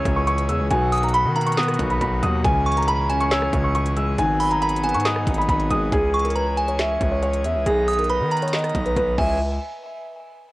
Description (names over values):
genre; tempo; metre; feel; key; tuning
hip hop, trap; 138 BPM; 4/4; half-time; C# dorian; A4 = 439 Hz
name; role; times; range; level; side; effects
felt-muted upright piano; melody; 0.0-9.4 s; G#4 to E6; -23 LUFS; equal; cassette tape, tape echo
delicate synth tine bell; second line; 0.0-9.4 s; G#5 to D#6; -27 LUFS; right 2 dB; chorus, cassette tape, tape echo
dark baby grand piano; accompaniment; 0.0-5.9 s; B2 to C#5; -25 LUFS; left 1 dB; cassette tape
pipe organ, full organ; sustained chords; 0.0-9.4 s; B2 to A#5; -31 LUFS; equal; cassette tape
distorted 808-style bass; bass; 0.1-9.6 s; G#1 to D#3; -24 LUFS; equal; distortion
trap drum kit; drums; 0.1-9.3 s; crash cymbal, handclaps, hi-hat, kick drum, rim click, snare drum; -28 LUFS; equal; cassette tape
room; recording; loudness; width
light reverb; home recording on cassette; -18 LUFS; side -19 dB against mid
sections
0.0-5.9 A section; 5.9-9.4 B section; 9.4-10.5 C section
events
none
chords
0.0 C#m; 0.7 Bmaj7; 2.4 C#m; 4.2 G#m7; 5.9 C#m; 7.7 Bmaj7; 9.2 C#m; 9.4 N.C.